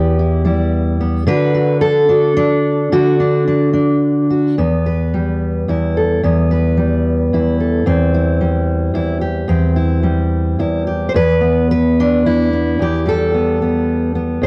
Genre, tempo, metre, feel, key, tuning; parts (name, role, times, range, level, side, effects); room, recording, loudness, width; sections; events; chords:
folk, solo fingerstyle acoustic guitar; 110 BPM; 3/4; straight; A4 = 438 Hz
fingerpicked steel-string acoustic guitar; solo; 0.0-14.5 s; E2 to C5; -15 LUFS; equal; cassette tape
moderate studio reverb, RT60 0.6 s; home recording on cassette; -15 LUFS; mono
0.0-4.6 A section; 4.6-11.1 B section; 11.1-14.5 C section
0.0 Em; 1.3 D; 4.6 Em; 7.9 C/E; 11.1 Em